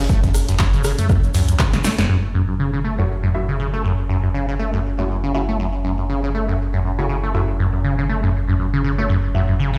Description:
acid house; 120 BPM; 4/4; swing 56% on 16ths; F# minor pentatonic; A4 = 444 Hz
dark analog pad; sustained chords; 0.0-9.8 s; C#5; -36 LUFS; equal; chorus, sidechain pumping
liquid acid bass; riff; 0.0-9.8 s; F#2 to A3; -22 LUFS; equal; phaser, sidechain pumping, delay
warm sub bass; bass; 0.0-9.8 s; E1 to F#2; -25 LUFS; equal; sidechain pumping
big rock drum kit; drums; 0.0-2.0 s; hi-hat, snare drum; -38 LUFS; equal
electronic kick drum; drums; 0.1-1.7 s; -20 LUFS; equal; overdrive
tube shaker; percussion; 0.1-2.1 s; -37 LUFS; equal
punchy analog drum machine; drums; 0.2-2.1 s; handclaps, hi-hat, rim click, snare drum; -26 LUFS; equal; overdrive, low-pass filter on hats, low-pass filter on snare
filtered dub chord stab; stabs; 3.0-9.5 s; A3 to E5; -31 LUFS; equal; phaser, subtle chorus, delay
moderate studio reverb, RT60 0.6 s; played on a big sound system in a bare room, stone room reverb; -20 LUFS; mono
0.0-2.1 A section; 2.1-9.8 B section
drum fill 1.7-2.1; band accent 2.0; filter sweep on acid bass 2.1-9.8
0.0 F#m; 2.1 F#m7
| 0.10 0.59 1.09 1.59 | 2.10 2.60 3.10 3.60 | 4.09 4.59 5.09 5.59 | 6.09 6.59 7.09 7.59 | 8.10 8.60 9.10 9.60

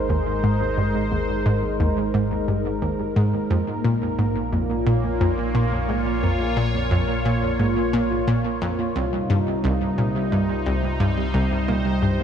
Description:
ambient, sequencer-driven space music; 88 BPM; 4/4; straight; Bb dorian; A4 = 440 Hz
sweeping resonant pad; sustained chords; 0.0-12.2 s; Bb2 to F5; -24 LUFS; equal; chorus
soft round pluck; arpeggios; 0.0-12.2 s; G3 to Bb5; -30 LUFS; moving between right 1 dB and right 7 dB; chorus, auto-pan, analog delay
warm sub bass; bass; 0.0-12.2 s; Ab1 to C2; -30 LUFS; equal
analog pluck; riff; 0.1-12.2 s; C2 to Bb2; -23 LUFS; equal; chorus, analog delay
wet concert hall reverb, RT60 2.4 s; cassette tape; -20 LUFS; side -8 dB against mid
0.0-12.2 A section
fade-in on synth arpeggio sound 0.0-12.2
0.0 Abadd9; 3.5 Bbm; 9.0 Cm
0.09 | 0.78 1.46 2.14 2.82 | 3.50 4.18 4.87 5.55 | 6.23 6.91 7.59 8.28 | 8.96 9.64 10.32 11.00 | 11.68

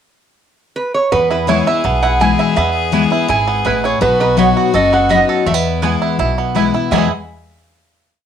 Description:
bluegrass; 166 BPM; 4/4; straight; E major; A4 = 440 Hz
lap resonator guitar; melody; 0.8-7.1 s; B4 to G#5; -16 LUFS; right 2 dB; cassette tape
clear fiddle; second line; 1.1-7.1 s; E4 to G#4; -24 LUFS; left 9 dB
picked steel-string acoustic guitar; accompaniment; 1.1-7.1 s; E2 to F#4; -17 LUFS; left 8 dB
bluegrass banjo; arpeggios; 1.1-7.1 s; G#3 to A4; -19 LUFS; right 8 dB
upright bass; bass; 1.1-7.1 s; F#1 to E2; -21 LUFS; equal
mandolin; stabs; 1.5-7.1 s; B3 to B5; -20 LUFS; right 9 dB
moderate studio reverb, RT60 0.5 s; home recording on cassette; -12 LUFS; side -8 dB against mid
0.0-1.1 pickup bar; 1.1-6.9 A section; 6.9-8.3 final chord
0.0 N.C.; 1.1 E; 4.0 B; 5.5 E
0.03 0.40 0.76 | 1.12 1.48 1.84 2.20 | 2.56 2.93 3.29 3.65 | 4.01 4.37 4.74 5.10 | 5.46 5.83 6.19 6.55 | 6.92

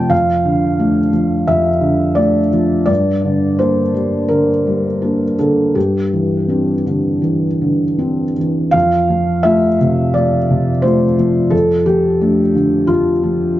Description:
neoclassical minimalist piano; 79-89 BPM; 4/4; rubato; F major; A4 = 436 Hz
felt-muted upright piano; solo; 0.0-13.6 s; F2 to A5; -12 LUFS; equal
moderate small room reverb, RT60 0.5 s; nothing above 7.6 kHz; -13 LUFS; side -14 dB against mid
0.0-8.7 A section; 8.7-13.6 B section
0.1 Dm/F; 2.9 Gm; 5.8 Cadd9/G; 8.7 F; 11.5 Dm/F
| 0.11 0.80 1.48 2.18 | 2.89 3.60 4.29 5.01 | 5.75 6.50 7.24 8.00 | 8.74 9.45 10.15 10.84 | 11.52 12.20 12.90 13.59

